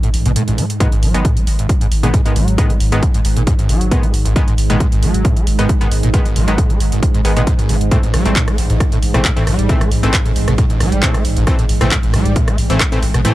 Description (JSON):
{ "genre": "driving peak-time techno", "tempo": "135 BPM", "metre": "4/4", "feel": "straight", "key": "G# minor", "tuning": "A4 = 441 Hz", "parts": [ { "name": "screaming distorted acid line", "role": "riff", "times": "0.0-13.3 s", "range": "G#1 to A3", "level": "-20 LUFS", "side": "equal", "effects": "distortion, ensemble chorus, cassette tape, sidechain pumping" }, { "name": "deep dark ambient pad", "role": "drone", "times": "0.0-13.3 s", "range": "G#2", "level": "-22 LUFS", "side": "right 2 dB", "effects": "chorus, built-in reverb, sidechain pumping" }, { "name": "techno drum kit", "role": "drums", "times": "0.0-13.3 s", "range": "handclaps, hi-hat, rim click", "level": "-23 LUFS", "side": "right 1 dB", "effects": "sidechain pumping on hats" }, { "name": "saturated sub bass", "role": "bass", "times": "0.1-13.2 s", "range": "G#1 to A1", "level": "-17 LUFS", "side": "equal", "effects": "tube saturation, sidechain pumping, low-pass filter" }, { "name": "supersaw stab", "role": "stabs", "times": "0.8-13.3 s", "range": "D#3 to C4", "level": "-23 LUFS", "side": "left 1 dB", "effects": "cassette tape, sidechain pumping, analog delay" }, { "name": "electronic kick drum", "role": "drums", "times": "0.8-12.9 s", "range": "none", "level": "-16 LUFS", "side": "equal", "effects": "none" } ], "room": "little or no reverb", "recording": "dry, gritty hardware recording", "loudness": "-12 LUFS", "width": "side -16 dB against mid", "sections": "0.0-13.3 A section", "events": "none", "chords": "0.0 N.C.; 0.8 G#m; 7.9 Am", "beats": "0.36 | 0.80 1.25 1.69 2.14 | 2.58 3.03 3.47 3.92 | 4.36 4.80 5.25 5.69 | 6.14 6.58 7.03 7.47 | 7.92 8.36 8.80 9.25 | 9.69 10.14 10.58 11.03 | 11.47 11.91 12.36 12.80 | 13.25" }